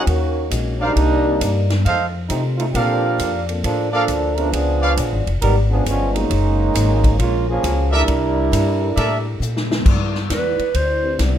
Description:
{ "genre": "jazz, big band swing", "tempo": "135 BPM", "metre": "4/4", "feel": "swing 65% on 8ths", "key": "unclear", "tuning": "A4 = 439 Hz", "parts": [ { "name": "clear trombone section", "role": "second line", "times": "0.0-9.4 s", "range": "Eb3 to Bb4", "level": "-20 LUFS", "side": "right 2 dB", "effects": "plate reverb" }, { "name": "clear trumpet section", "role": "stabs", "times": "0.0-4.9, 7.9-9.2 s", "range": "A4 to F5", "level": "-21 LUFS", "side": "right 2 dB", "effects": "plate reverb" }, { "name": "picked old ladder-braced acoustic guitar", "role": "accompaniment", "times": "0.1-11.4 s", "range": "F2 to A4", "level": "-31 LUFS", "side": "left 5 dB", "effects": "none" }, { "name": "upright bass", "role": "bass", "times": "0.1-11.4 s", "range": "F1 to C3", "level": "-20 LUFS", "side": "equal", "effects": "none" }, { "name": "swinging big-band drum kit", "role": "drums", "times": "0.1-11.3 s", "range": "crash cymbal, hi-hat, kick drum, ride cymbal, snare drum", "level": "-24 LUFS", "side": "equal", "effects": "none" }, { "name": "dark upright piano", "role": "accompaniment", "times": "0.5-11.4 s", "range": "Ab3 to B4", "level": "-30 LUFS", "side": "left 3 dB", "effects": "plate reverb" }, { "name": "growling clarinet", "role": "melody", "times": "10.3-11.2 s", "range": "B4 to C5", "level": "-20 LUFS", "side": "right 2 dB", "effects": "none" } ], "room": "moderate small room reverb, RT60 0.5 s", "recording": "rough home demo mix", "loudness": "-16 LUFS", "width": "side -10 dB against mid", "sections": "0.0-9.9 A section; 9.9-11.4 B section", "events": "trombone section solo 0.0-9.9; drum fill 9.4-9.9; clarinet solo 9.9-11.4", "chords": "0.0 Gb6; 1.0 Cm9; 1.9 F7; 2.7 Bbmaj7; 4.5 Db7b9; 6.3 Gbmaj9; 8.1 C13; 9.9 Cmaj9", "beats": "0.08 0.52 | 0.97 1.41 1.86 2.30 | 2.75 3.19 3.64 4.08 | 4.53 4.97 5.42 5.87 | 6.31 6.75 7.20 7.64 | 8.09 8.53 8.97 9.42 | 9.86 10.30 10.75 11.19" }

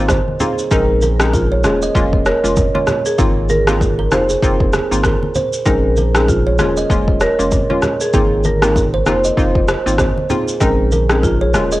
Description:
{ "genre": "afrobeats", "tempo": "97 BPM", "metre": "4/4", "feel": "swing 58% on 16ths", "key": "unclear", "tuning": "A4 = 441 Hz", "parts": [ { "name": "marimba with medium mallets", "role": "melody", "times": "0.0-11.8 s", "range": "F4 to C5", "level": "-20 LUFS", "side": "equal", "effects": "none" }, { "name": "hollow square pluck", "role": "accompaniment", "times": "0.0-11.8 s", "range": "Ab3 to F4", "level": "-20 LUFS", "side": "left 1 dB", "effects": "chorus, cassette tape" }, { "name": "warm sub bass", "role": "bass", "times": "0.0-11.8 s", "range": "Eb1 to Bb1", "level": "-19 LUFS", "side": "equal", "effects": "none" }, { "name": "kalimba", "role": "riff", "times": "0.1-11.8 s", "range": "Ab4 to Eb5", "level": "-20 LUFS", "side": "right 4 dB", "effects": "cassette tape" }, { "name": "deep house drum kit", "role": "drums", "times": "0.1-11.8 s", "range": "kick drum, rim click, shaker", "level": "-18 LUFS", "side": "equal", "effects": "cassette tape" }, { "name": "congas", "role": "percussion", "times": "0.1-11.7 s", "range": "none", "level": "-25 LUFS", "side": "left 1 dB", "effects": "none" } ], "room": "studio reverb", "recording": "home recording on cassette", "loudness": "-12 LUFS", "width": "side -17 dB against mid", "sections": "0.0-11.8 A section", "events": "none", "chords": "0.0 Ab6; 0.7 Bbm11; 1.6 Eb7sus4; 3.2 Ab6; 5.7 Bbm11; 6.6 Eb7sus4; 8.1 Ab6; 10.6 Bbm11", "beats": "0.10 | 0.71 1.33 1.95 2.57 | 3.19 3.81 4.43 5.04 | 5.66 6.28 6.90 7.52 | 8.14 8.76 9.37 9.99 | 10.61 11.23" }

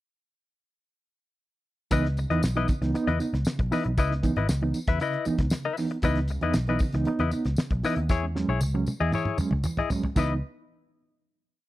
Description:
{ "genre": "funk", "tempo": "116 BPM", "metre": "4/4", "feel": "straight", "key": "C# minor", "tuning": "A4 = 438 Hz", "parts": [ { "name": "clean electric guitar", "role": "accompaniment", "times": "1.9-10.3 s", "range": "E4 to E5", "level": "-30 LUFS", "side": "left 6 dB", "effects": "none" }, { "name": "reed electric piano", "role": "stabs", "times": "1.9-10.4 s", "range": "C#3 to D#4", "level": "-29 LUFS", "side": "right 3 dB", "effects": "overdrive, fast tremolo, tube saturation" }, { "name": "vintage muted picked electric bass", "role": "bass", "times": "1.9-10.4 s", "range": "G#1 to E2", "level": "-27 LUFS", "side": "equal", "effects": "none" }, { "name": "cloth-damped thuddy drum kit", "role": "drums", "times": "1.9-10.3 s", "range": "crash cymbal, hi-hat, kick drum, snare drum, toms", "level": "-27 LUFS", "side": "equal", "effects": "none" }, { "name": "tambourine", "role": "percussion", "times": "1.9-10.4 s", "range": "none", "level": "-44 LUFS", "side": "left 2 dB", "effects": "none" } ], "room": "studio reverb", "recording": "dry, close 1970s-style studio recording", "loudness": "-24 LUFS", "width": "side -16 dB against mid", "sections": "1.9-10.2 A section; 10.2-11.7 final chord", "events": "drum fill 8.1-10.2", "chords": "1.9 C#m9; 8.1 E6; 10.2 C#m9", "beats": "| 1.91 2.43 2.94 3.46 | 3.98 4.49 5.01 5.52 | 6.04 6.55 7.07 7.58 | 8.10 8.62 9.13 9.65 | 10.16" }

